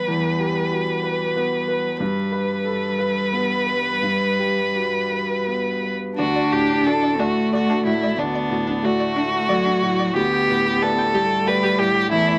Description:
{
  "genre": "neoclassical piano and strings",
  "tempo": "82-95 BPM",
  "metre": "3/4",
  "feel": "rubato",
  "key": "unclear",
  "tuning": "A4 = 440 Hz",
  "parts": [
    { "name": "rich violin", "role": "melody", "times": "0.0-12.4 s", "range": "D4 to B4", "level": "-24 LUFS", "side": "equal", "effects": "none" },
    { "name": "dark cello", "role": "second line", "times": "0.0-12.4 s", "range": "F#3 to D4", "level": "-28 LUFS", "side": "equal", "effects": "none" },
    { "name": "clear grand piano", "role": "accompaniment", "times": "0.0-12.4 s", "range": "D2 to D5", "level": "-26 LUFS", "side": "equal", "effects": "none" },
    { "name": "string-like resonator pluck", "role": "arpeggios", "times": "6.2-12.4 s", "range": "D4 to G5", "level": "-31 LUFS", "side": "equal", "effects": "chorus, phaser" }
  ],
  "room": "moderate club reverb, RT60 0.6 s",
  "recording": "vinyl crackle",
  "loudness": "-21 LUFS",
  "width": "mono",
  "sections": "0.0-6.2 A section; 6.2-12.4 B section",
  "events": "none",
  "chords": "0.0 Em; 2.0 G; 6.2 D; 10.2 Gadd9/D"
}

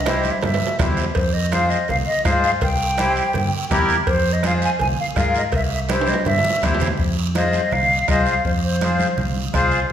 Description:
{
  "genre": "latin, cumbia",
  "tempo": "165 BPM",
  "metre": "4/4",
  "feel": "straight",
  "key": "unclear",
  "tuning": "A4 = 440 Hz",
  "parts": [
    { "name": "hollow concert flute", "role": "melody", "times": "0.0-9.3 s", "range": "C5 to Ab5", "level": "-22 LUFS", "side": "equal", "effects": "none" },
    { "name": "fingered electric bass", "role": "bass", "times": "0.0-9.8 s", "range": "C2 to Ab2", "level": "-23 LUFS", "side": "equal", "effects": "none" },
    { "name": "accordion", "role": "accompaniment", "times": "0.1-9.8 s", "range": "E4 to C5", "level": "-23 LUFS", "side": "left 2 dB", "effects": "none" },
    { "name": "bombo", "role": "percussion", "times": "0.1-9.7 s", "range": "none", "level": "-26 LUFS", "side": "left 1 dB", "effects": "none" },
    { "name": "congas", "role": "percussion", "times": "0.1-9.7 s", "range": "none", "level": "-28 LUFS", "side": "right 1 dB", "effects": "none" },
    { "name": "cowbell and timbales", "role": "percussion", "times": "0.1-7.0 s", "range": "none", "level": "-28 LUFS", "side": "right 4 dB", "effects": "none" },
    { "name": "guiro", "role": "percussion", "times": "0.1-9.9 s", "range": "none", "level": "-31 LUFS", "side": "right 5 dB", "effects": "none" }
  ],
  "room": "wet recital hall reverb, RT60 1.4 s",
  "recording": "recorded in a church or concert hall",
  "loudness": "-17 LUFS",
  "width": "side -9 dB against mid",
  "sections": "0.0-7.0 A section; 7.0-9.9 B section",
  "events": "drum fill 0.0-1.2, 5.9-7.0",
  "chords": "0.0 C; 1.2 Fm; 2.6 C7; 4.1 Fm; 5.5 C; 7.0 Fm"
}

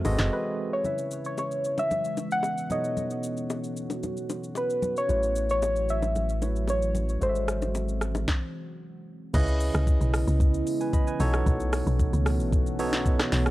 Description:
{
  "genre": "amapiano",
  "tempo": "113 BPM",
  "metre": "4/4",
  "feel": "straight",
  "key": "C# minor",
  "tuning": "A4 = 440 Hz",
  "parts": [
    { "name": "barky tine electric piano", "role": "accompaniment", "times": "0.0-13.5 s", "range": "B2 to B5", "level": "-32 LUFS", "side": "right 2 dB", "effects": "medium stereo tremolo" },
    { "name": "deep dark ambient pad", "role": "sustained chords", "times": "0.0-13.5 s", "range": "E3 to F#4", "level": "-35 LUFS", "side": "right 1 dB", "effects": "chorus, built-in reverb" },
    { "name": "deep log drum bass", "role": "bass", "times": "0.0-0.3, 9.3-13.5 s", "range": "F#1 to C#2", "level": "-26 LUFS", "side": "equal", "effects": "none" },
    { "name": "afro-pop drum kit", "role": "drums", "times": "0.0-13.5 s", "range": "crash cymbal, hi-hat, kick drum, rim click, shaker, snare drum", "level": "-27 LUFS", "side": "equal", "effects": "none" },
    { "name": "bongos and congas", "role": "percussion", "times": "0.0-8.3 s", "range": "none", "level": "-35 LUFS", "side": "left 3 dB", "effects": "none" },
    { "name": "soft round pluck", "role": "melody", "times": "0.3-8.8 s", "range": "B4 to F#5", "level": "-28 LUFS", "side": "equal", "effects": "chorus, tape echo" },
    { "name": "punchy sub bass", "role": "bass", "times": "5.1-8.3 s", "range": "G#1 to A1", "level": "-29 LUFS", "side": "equal", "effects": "none" }
  ],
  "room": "little or no reverb",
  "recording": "dry, gritty hardware recording, cassette tape",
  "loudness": "-24 LUFS",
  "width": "side -17 dB against mid",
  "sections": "0.8-9.3 A section; 9.3-13.5 B section",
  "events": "break 0.3-0.8; stop 8.3-9.3; drop 9.3-13.5",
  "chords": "0.0 G#7b9b13; 0.8 C#m7; 2.7 B9; 5.1 A6; 7.2 G#7b9b13; 9.3 C#m9; 11.2 B9"
}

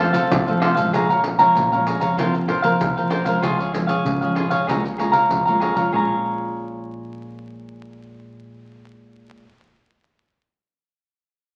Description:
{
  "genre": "samba and choro",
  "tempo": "96 BPM",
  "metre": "4/4",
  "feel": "straight",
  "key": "Bb minor",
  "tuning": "A4 = 440 Hz",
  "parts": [
    { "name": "bowl-back mandolin", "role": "melody", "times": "0.0-0.6 s", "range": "A4", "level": "-30 LUFS", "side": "equal", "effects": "none" },
    { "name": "warm clarinet", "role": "second line", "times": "0.0-0.9 s", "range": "none", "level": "barely audible", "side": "none", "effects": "none" },
    { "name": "cavaquinho", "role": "accompaniment", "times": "0.0-9.5 s", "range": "F4 to Bb5", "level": "-22 LUFS", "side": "equal", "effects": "none" },
    { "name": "nylon-string guitar", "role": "accompaniment", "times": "0.0-9.5 s", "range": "F2 to F4", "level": "-28 LUFS", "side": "equal", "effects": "none" },
    { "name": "fingered electric bass", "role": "bass", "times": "0.0-9.3 s", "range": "F1 to F3", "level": "-35 LUFS", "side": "equal", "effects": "none" },
    { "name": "surdo, pandeiro, maracas and tamborim", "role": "percussion", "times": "0.0-6.1 s", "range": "none", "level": "-28 LUFS", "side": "equal", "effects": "none" }
  ],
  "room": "wet large studio reverb, RT60 1.1 s",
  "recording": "very old 78 rpm record, vinyl crackle",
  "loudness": "-20 LUFS",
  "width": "mono",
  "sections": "0.9-5.9 A section; 5.9-8.4 B section",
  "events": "none",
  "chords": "0.0 F; 0.9 Bbm7; 2.2 Fsus4/C; 3.4 Db; 4.7 Bbm7/Db; 5.9 Bbm7"
}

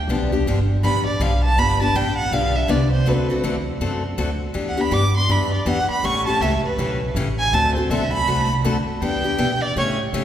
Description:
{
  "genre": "acoustic string swing (jazz manouche)",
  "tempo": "161 BPM",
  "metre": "4/4",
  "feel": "swing 62% on 8ths",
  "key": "unclear",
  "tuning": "A4 = 438 Hz",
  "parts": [
    { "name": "upright bass", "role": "bass", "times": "0.0-10.2 s", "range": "G1 to C#3", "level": "-22 LUFS", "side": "equal", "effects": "none" },
    { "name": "picked steel-string acoustic guitar", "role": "accompaniment", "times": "0.1-10.2 s", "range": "C#3 to A4", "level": "-23 LUFS", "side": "left 3 dB", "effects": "none" },
    { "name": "rich violin", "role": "melody", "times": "0.8-9.9 s", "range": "B4 to D6", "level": "-22 LUFS", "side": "right 2 dB", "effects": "none" }
  ],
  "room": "wet church reverb, RT60 3.1 s",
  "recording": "recorded in a church or concert hall",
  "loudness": "-18 LUFS",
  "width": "side -10 dB against mid",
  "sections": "0.0-10.2 A section",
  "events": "violin solo 0.0-10.2",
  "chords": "0.0 G7; 3.1 D7; 4.6 Em7; 6.0 A7; 7.5 D7; 9.0 Em7"
}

